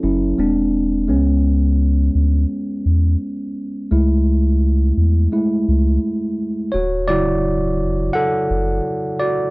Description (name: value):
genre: hip hop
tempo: 85 BPM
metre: 4/4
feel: swing 62% on 16ths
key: A major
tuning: A4 = 439 Hz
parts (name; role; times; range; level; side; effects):
- tine electric piano; accompaniment; 0.0-9.5 s; C#3 to F#5; -18 LUFS; equal; cassette tape
- soft dub sub bass; bass; 0.0-8.8 s; D1 to E2; -16 LUFS; equal; none
room: light reverb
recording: none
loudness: -15 LUFS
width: side -24 dB against mid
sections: 0.0-9.5 A section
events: tine electric piano solo 0.0-9.5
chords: 0.4 Eaug7; 1.1 C#7(no3); 3.9 Amaj7/C#; 6.7 Dmaj7